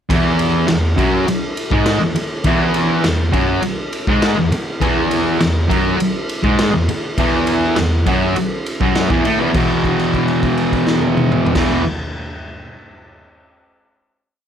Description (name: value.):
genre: garage rock duo or trio.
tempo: 102 BPM.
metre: 4/4.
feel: straight.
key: E major.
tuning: A4 = 441 Hz.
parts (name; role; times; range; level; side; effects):
fuzz guitar; riff; 0.1-11.8 s; E2 to A3; -15 LUFS; equal; distortion.
raw garage drum kit; drums; 0.1-11.7 s; crash cymbal, kick drum, ride cymbal, snare drum, toms; -20 LUFS; equal; none.
room: light reverb.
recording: none.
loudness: -14 LUFS.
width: side -9 dB against mid.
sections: 0.1-9.6 riff; 9.6-11.9 final chord.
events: held note 9.6-11.6.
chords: 0.1 E; 9.6 E5.